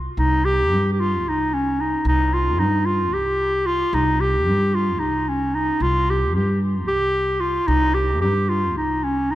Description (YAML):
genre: Turkish makam ensemble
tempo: 224 BPM (eighths)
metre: 7/8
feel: straight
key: C makam kurdi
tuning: A4 = 440 Hz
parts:
  - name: upright bass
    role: bass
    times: 0.0-9.3 s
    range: C2 to G2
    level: -22 LUFS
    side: equal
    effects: none
  - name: warm clarinet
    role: melody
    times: 0.2-9.3 s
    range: Db4 to G4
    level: -20 LUFS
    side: equal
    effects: tape echo
room: light reverb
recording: none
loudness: -18 LUFS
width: side -14 dB against mid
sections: 0.2-9.3 A section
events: none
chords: none